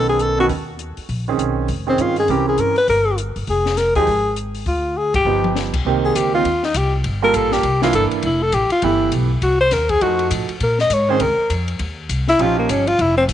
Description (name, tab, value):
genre	jazz, small-group swing and bop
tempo	202 BPM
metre	4/4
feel	swing 61% on 8ths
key	F minor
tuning	A4 = 441 Hz
part	clear alto saxophone	melody	0.0-13.2 s	Bb3 to Eb5	-17 LUFS	left 2 dB	none
part	clear baby grand piano	accompaniment	0.0-12.8 s	D#3 to Bb4	-22 LUFS	right 10 dB	none
part	upright bass	bass	0.0-13.3 s	F1 to Bb2	-22 LUFS	equal	none
part	compact cocktail drum kit	drums	0.2-13.3 s	crash cymbal, hi-hat, kick drum, ride cymbal, snare drum, toms	-28 LUFS	left 4 dB	none
room	light reverb, small room ambience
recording	1960s-style stereo, nothing above 10.4 kHz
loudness	-16 LUFS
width	side -11 dB against mid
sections	0.0-5.9 A section; 5.9-13.3 B section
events	drum fill 5.0-5.6; band accent 5.1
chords	0.0 B9; 1.1 Bbm11; 2.3 C7b9; 3.5 Fm7; 4.7 Ddim; 5.3 G7b13; 5.9 Cm7; 7.0 Gm9; 7.6 C9; 8.2 Fmaj9#11; 9.4 Cm7b5; 10.0 F7b9; 10.6 Bbm7; 11.8 Eb9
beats	0.20 0.50 0.80 | 1.09 1.39 1.69 1.99 | 2.29 2.58 2.88 3.18 | 3.48 3.77 4.07 4.37 | 4.67 4.96 5.26 5.56 | 5.86 6.15 6.45 6.75 | 7.04 7.34 7.64 7.94 | 8.23 8.53 8.83 9.12 | 9.42 9.72 10.02 10.31 | 10.61 10.91 11.20 11.50 | 11.80 12.10 12.39 12.69 | 12.99 13.29